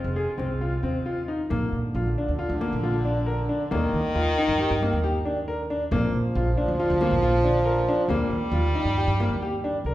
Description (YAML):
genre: contemporary instrumental, chamber music in an uneven meter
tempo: 136 BPM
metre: 5/4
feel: straight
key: unclear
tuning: A4 = 440 Hz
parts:
  - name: warm woodwind section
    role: sustained chords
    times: 0.0-1.5 s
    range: Eb3 to F4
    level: -41 LUFS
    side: equal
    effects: none
  - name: clear grand piano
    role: arpeggios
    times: 0.0-9.9 s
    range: Bb3 to Bb4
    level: -26 LUFS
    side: left 1 dB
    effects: none
  - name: upright bass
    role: bass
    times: 0.0-9.9 s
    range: F1 to Eb3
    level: -27 LUFS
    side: right 1 dB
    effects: none
  - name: frame drum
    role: percussion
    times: 0.4-9.9 s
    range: none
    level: -36 LUFS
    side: equal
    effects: none
  - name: clear French horn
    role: second line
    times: 1.5-9.9 s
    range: D3 to G3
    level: -27 LUFS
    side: equal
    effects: none
room: wet recital hall reverb, RT60 1.7 s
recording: heard from further back in the room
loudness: -22 LUFS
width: side -15 dB against mid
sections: 0.0-1.5 A section; 1.5-9.9 B section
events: break 1.1-1.5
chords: 0.0 Fm7; 1.5 Bb; 3.7 Eb; 5.9 Bb; 8.1 Eb